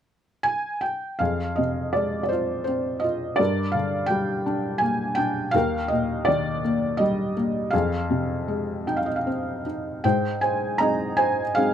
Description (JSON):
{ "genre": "classical, lyrical solo piano", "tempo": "76-85 BPM", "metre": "3/4", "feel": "rubato", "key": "F dorian", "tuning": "A4 = 439 Hz", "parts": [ { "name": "felt-muted upright piano", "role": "solo", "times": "0.4-11.7 s", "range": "Eb2 to Bb5", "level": "-22 LUFS", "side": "equal", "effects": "none" } ], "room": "light reverb", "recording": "close, detailed microphones", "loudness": "-22 LUFS", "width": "side -9 dB against mid", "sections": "0.0-1.2 A section; 1.2-10.0 B section; 10.0-11.7 C section", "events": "none", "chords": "0.0 N.C.; 1.2 Fm; 3.4 Gm; 5.5 Eb; 7.7 Fm7; 10.0 Ab" }